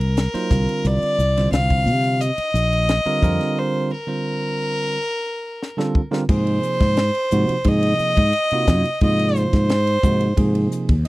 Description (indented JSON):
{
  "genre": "electric jazz fusion",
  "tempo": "88 BPM",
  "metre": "4/4",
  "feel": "straight",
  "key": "unclear",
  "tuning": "A4 = 440 Hz",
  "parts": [
    { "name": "rich violin", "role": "melody", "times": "0.0-10.7 s", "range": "Bb4 to F5", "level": "-22 LUFS", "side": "equal", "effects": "slapback echo" },
    { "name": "mellow fretless electric bass", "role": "bass", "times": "0.0-11.0 s", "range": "Bb1 to C3", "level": "-19 LUFS", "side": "equal", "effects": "none" },
    { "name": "crisp fusion drum kit", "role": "drums", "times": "0.0-11.1 s", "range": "crash cymbal, hi-hat, kick drum, ride cymbal, snare drum", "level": "-21 LUFS", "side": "equal", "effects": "none" },
    { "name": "bell-like tine electric piano", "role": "accompaniment", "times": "0.3-11.1 s", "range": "C3 to Eb5", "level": "-24 LUFS", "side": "right 2 dB", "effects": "none" }
  ],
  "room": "little or no reverb",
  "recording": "dry, close 1970s-style studio recording",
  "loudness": "-17 LUFS",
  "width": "side -19 dB against mid",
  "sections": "0.0-6.3 A section; 6.3-11.1 B section",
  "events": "break 3.6-6.3; drum fill 5.6-6.3; tine electric piano fill 10.7-11.1",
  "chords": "0.0 Ebmadd9; 0.5 Cm9; 3.2 Fsus24; 6.3 Ab7",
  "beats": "0.17 | 0.84 1.53 2.21 2.89 | 3.57 4.25 4.93 5.61 | 6.29 6.97 7.65 8.33 | 9.02 9.70 10.38 11.06"
}